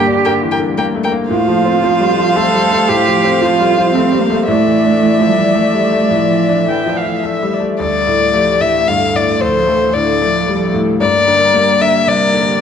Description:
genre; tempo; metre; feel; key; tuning
neoclassical piano and strings; 112 BPM; 3/4; rubato; D minor; A4 = 440 Hz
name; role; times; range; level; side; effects
muted violin; melody; 0.0-12.6 s; C5 to G5; -15 LUFS; left 4 dB; none
muted cello; second line; 0.0-12.6 s; D3 to A4; -17 LUFS; right 7 dB; none
bright concert grand piano; accompaniment; 0.0-12.6 s; D2 to D4; -17 LUFS; left 5 dB; none
muted viola; accompaniment; 0.0-12.6 s; G4 to G5; -22 LUFS; right 2 dB; none
hollow soft pad; sustained chords; 0.0-12.6 s; A3 to G5; -22 LUFS; right 1 dB; chorus
room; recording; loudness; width
moderate scoring stage reverb, RT60 1.7 s; dark, warm production; -11 LUFS; side -8 dB against mid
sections
0.0-7.8 A section; 7.8-12.6 B section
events
none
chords
0.0 Gm; 1.3 F/A; 4.5 Asus4; 7.8 Dm; 11.0 Gm

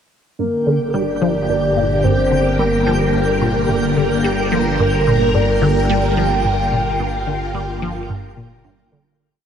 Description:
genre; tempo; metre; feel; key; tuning
ambient, sequencer-driven space music; 109 BPM; 4/4; straight; G minor; A4 = 440 Hz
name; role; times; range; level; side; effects
soft octave-layered synth lead; melody; 0.4-8.6 s; Bb4 to G5; -20 LUFS; equal; chorus, phaser, shimmer reverb, tape echo
phased string machine; sustained chords; 0.6-9.2 s; D3 to Bb4; -20 LUFS; equal; ensemble chorus, phaser, shimmer reverb
resonant blip pluck; riff; 0.4-9.0 s; G2 to G3; -21 LUFS; equal; phaser, ensemble chorus, tape echo
analog drone; bass; 1.3-9.2 s; G1; -22 LUFS; equal; chorus
twinkling granular texture; texture; 0.7-9.2 s; G5; -29 LUFS; equal; built-in reverb, shimmer reverb
room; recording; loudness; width
wet huge ambient reverb, RT60 8.0 s; none; -15 LUFS; side -8 dB against mid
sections
0.4-9.2 A section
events
fade-out 6.3-9.2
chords
0.4 Gm

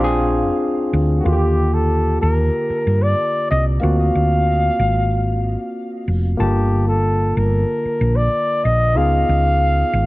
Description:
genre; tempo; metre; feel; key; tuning
lush 1970s-style soul; 93 BPM; 4/4; straight; unclear; A4 = 441 Hz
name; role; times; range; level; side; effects
breathy flugelhorn; melody; 0.0-10.1 s; Gb4 to F5; -21 LUFS; equal; tape echo
barky tine electric piano; accompaniment; 0.0-10.1 s; D3 to A5; -22 LUFS; left 1 dB; overdrive
hollow-body short-scale fingered electric bass; bass; 0.0-10.1 s; E#1 to G2; -17 LUFS; equal; none
room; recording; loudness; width
light reverb, small room ambience; none; -15 LUFS; side -19 dB against mid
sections
0.0-10.1 A section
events
none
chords
0.0 Bb9; 1.2 Ebmaj9; 3.8 D7alt; 6.4 Gm9; 9.0 Db7

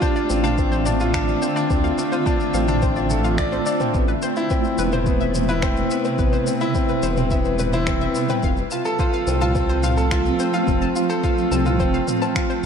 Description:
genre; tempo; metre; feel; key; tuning
piano and strings electronica; 107 BPM; 4/4; straight; D dorian; A4 = 440 Hz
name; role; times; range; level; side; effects
granular cloud pad; sustained chords; 0.0-12.7 s; C3 to E5; -25 LUFS; right 1 dB; built-in reverb, sidechain pumping, shimmer reverb
analog pluck; arpeggios; 0.0-12.5 s; B4 to A5; -31 LUFS; left 4 dB; chorus, sidechain pumping, ping-pong delay, shimmer reverb
bright grand piano; riff; 0.0-12.7 s; B3 to D5; -22 LUFS; left 1 dB; ping-pong delay, shimmer reverb
electronic kick drum; drums; 0.0-12.5 s; none; -23 LUFS; equal; studio reverb
organic electronic drum kit; drums; 0.0-12.6 s; finger snaps, shaker, toms; -30 LUFS; right 1 dB; studio reverb
dark detuned saw bass; bass; 0.3-12.0 s; E1 to D2; -24 LUFS; equal; sidechain pumping
room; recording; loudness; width
moderate concert hall reverb, RT60 2.0 s; dark, warm production; -18 LUFS; side -7 dB against mid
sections
0.0-12.7 A section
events
none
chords
0.0 Dm7; 3.9 Amadd9; 8.4 F

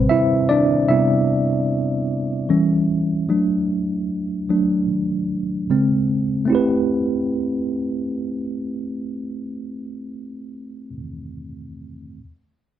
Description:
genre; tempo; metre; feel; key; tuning
R&B; 75 BPM; 4/4; swing 62% on 16ths; A dorian; A4 = 440 Hz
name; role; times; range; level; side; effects
mellow tine electric piano; accompaniment; 0.0-12.2 s; C3 to E5; -19 LUFS; equal; medium stereo tremolo
room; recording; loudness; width
moderate studio reverb, RT60 0.8 s; none; -18 LUFS; side -11 dB against mid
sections
0.0-6.5 A section; 6.5-9.7 B section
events
tine electric piano solo 0.0-6.5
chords
0.0 Am9 (rootless); 2.5 Em6; 3.3 Dadd9/F#; 5.7 G#add11/C#; 6.5 Am9

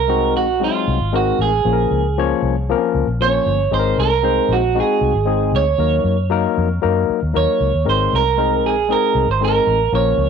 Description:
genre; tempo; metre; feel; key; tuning
uptempo 1960s-style soul; 116 BPM; 4/4; straight; Ab mixolydian; A4 = 440 Hz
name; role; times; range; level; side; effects
electric guitar through a small old amp; melody; 0.0-10.3 s; F4 to Db5; -18 LUFS; right 9 dB; none
vintage muted fingered electric bass; bass; 0.0-10.3 s; G1 to Gb2; -20 LUFS; left 1 dB; none
barky tine electric piano; accompaniment; 0.1-10.3 s; F3 to Db5; -20 LUFS; left 12 dB; overdrive
room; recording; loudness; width
moderate spring reverb, RT60 1.5 s; 1960s-style stereo with parts hard left and right; -15 LUFS; side -6 dB against mid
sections
0.0-10.3 A section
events
none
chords
0.0 Abadd9; 1.7 Bbm; 3.7 Abadd9; 5.8 Ebm; 7.9 Abadd9

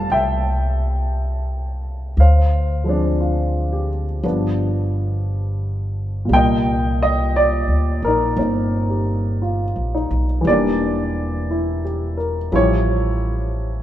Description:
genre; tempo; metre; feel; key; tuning
jazz ballad; 58 BPM; 4/4; swing 67% on 8ths; unclear; A4 = 440 Hz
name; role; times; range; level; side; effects
warm baby grand piano; accompaniment; 0.0-13.8 s; Bb2 to A5; -20 LUFS; equal; none
upright bass; bass; 0.0-13.8 s; E1 to D2; -20 LUFS; equal; none
room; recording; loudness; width
moderate plate reverb, RT60 3.4 s; heard from further back in the room; -17 LUFS; side -12 dB against mid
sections
0.0-13.8 A section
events
none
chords
0.0 Fmaj9; 2.2 Dm7b5; 4.2 G7; 6.3 Cm9; 10.4 Em7b5; 12.5 A7b13

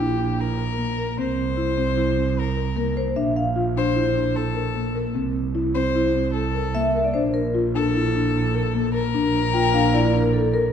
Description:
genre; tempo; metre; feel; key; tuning
contemporary instrumental, chamber music in an uneven meter; 151 BPM; 5/4; straight; Bb lydian; A4 = 442 Hz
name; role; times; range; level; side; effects
warm violin; melody; 0.0-10.7 s; G4 to C5; -26 LUFS; left 6 dB; none
buzzing marimba with soft mallets; arpeggios; 0.0-10.7 s; Bb3 to Bb4; -24 LUFS; left 2 dB; none
bright double bass; bass; 0.0-10.7 s; Bb1 to C2; -24 LUFS; right 4 dB; none
vibraphone with medium mallets; second line; 2.8-3.6, 6.7-10.7 s; A4 to G5; -24 LUFS; left 2 dB; none
room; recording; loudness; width
wet scoring stage reverb, RT60 1.6 s; dark, warm production; -20 LUFS; side -8 dB against mid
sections
0.0-10.7 A section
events
none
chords
0.0 Bb; 1.2 C7; 3.2 Bbmaj7; 5.2 C7; 7.1 Bb

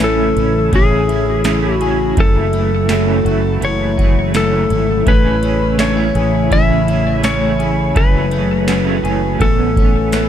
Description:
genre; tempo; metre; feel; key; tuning
dream pop; 83 BPM; 4/4; straight; A major; A4 = 441 Hz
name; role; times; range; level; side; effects
clean lap steel guitar; melody; 0.0-10.3 s; G#4 to E5; -18 LUFS; left 3 dB; digital delay
electric guitar at the edge of break-up; accompaniment; 0.0-10.3 s; F#2 to G#4; -22 LUFS; right 6 dB; tremolo, analog chorus
phased analog pad; sustained chords; 0.0-10.3 s; C#3 to E4; -21 LUFS; right 2 dB; phaser, chorus
clean electric guitar; arpeggios; 0.0-10.3 s; F#2 to G#4; -22 LUFS; left 4 dB; lush chorus, digital delay
fretless electric bass; bass; 0.0-10.3 s; F#1 to A1; -19 LUFS; equal; none
booming analog drum machine; drums; 0.0-10.3 s; kick drum, ride cymbal, snare drum, tambourine; -17 LUFS; equal; none
room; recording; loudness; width
digital ambience; dark, warm production; -12 LUFS; side -10 dB against mid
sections
0.0-10.3 A section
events
none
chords
0.0 Amaj7; 2.2 F#m9; 5.1 Amaj7; 8.0 F#m9; 9.4 Amaj9

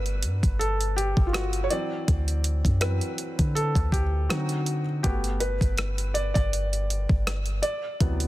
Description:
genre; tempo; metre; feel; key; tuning
contemporary R&B; 81 BPM; 4/4; swing 54% on 16ths; G major; A4 = 440 Hz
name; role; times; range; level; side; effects
felt-muted upright piano; accompaniment; 0.0-8.3 s; C3 to D5; -30 LUFS; equal; none
soft 808-style bass; bass; 0.0-8.3 s; G1 to D3; -26 LUFS; equal; none
crisp 8-bit digital drum machine; drums; 0.1-8.3 s; hi-hat, kick drum, rim click; -26 LUFS; equal; none
room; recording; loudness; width
little or no reverb; dense, heavily limited modern master; -23 LUFS; side -16 dB against mid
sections
0.0-8.3 A section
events
felt piano solo 0.0-8.3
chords
0.0 Gmaj7; 1.7 D9; 4.3 D7b9; 5.0 Gmaj7; 7.6 D13

